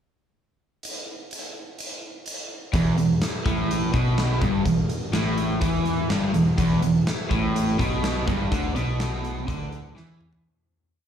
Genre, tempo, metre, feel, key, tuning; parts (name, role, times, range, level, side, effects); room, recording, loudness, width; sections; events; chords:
classic rock; 124 BPM; 4/4; straight; A4 = 440 Hz
huge arena drum kit; drums; 0.8-10.4 s; hi-hat, kick drum, snare drum, toms; -28 LUFS; equal
distorted electric guitar; riff; 2.7-10.4 s; E2 to E3; -26 LUFS; right 7 dB; distortion, slapback echo
overdriven electric guitar; riff; 2.7-10.4 s; E2 to E3; -27 LUFS; left 8 dB; slapback echo
overdriven picked electric bass; bass; 2.7-10.4 s; E1 to E2; -27 LUFS; equal
moderate club reverb, RT60 0.6 s; live gig heard through the venue's PA, club reverb; -21 LUFS; side -8 dB against mid
0.8-2.7 pickup bar; 2.7-10.4 riff
fade-out 8.5-10.4; drum fill 10.0-10.4
0.8 N.C.; 2.7 E5